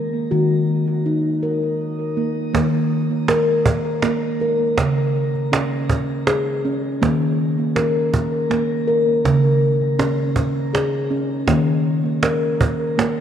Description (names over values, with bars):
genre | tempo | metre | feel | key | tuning
world meditative, meditative tuned percussion | 80 BPM | 3/4 | swing 54% on 16ths | Eb minor | A4 = 439 Hz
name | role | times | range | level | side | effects
steel tongue drum | arpeggios | 0.0-13.2 s | Db3 to Bb4 | -18 LUFS | equal | tape echo, shimmer reverb
cajon | percussion | 2.5-13.2 s | none | -22 LUFS | right 3 dB | none
room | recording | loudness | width
wet plate reverb, RT60 2.6 s | dreamy mix soaked in reverb | -17 LUFS | side -9 dB against mid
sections
0.0-2.5 A section; 2.5-13.2 B section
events
none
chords
0.3 Ebm; 2.5 Eb5; 4.8 Db5; 7.0 Eb5; 9.2 Db5; 11.5 Eb5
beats
| 0.30 1.05 1.79 | 2.54 3.29 4.03 | 4.78 5.52 6.27 | 7.01 7.76 8.50 | 9.25 9.99 10.74 | 11.48 12.23 12.98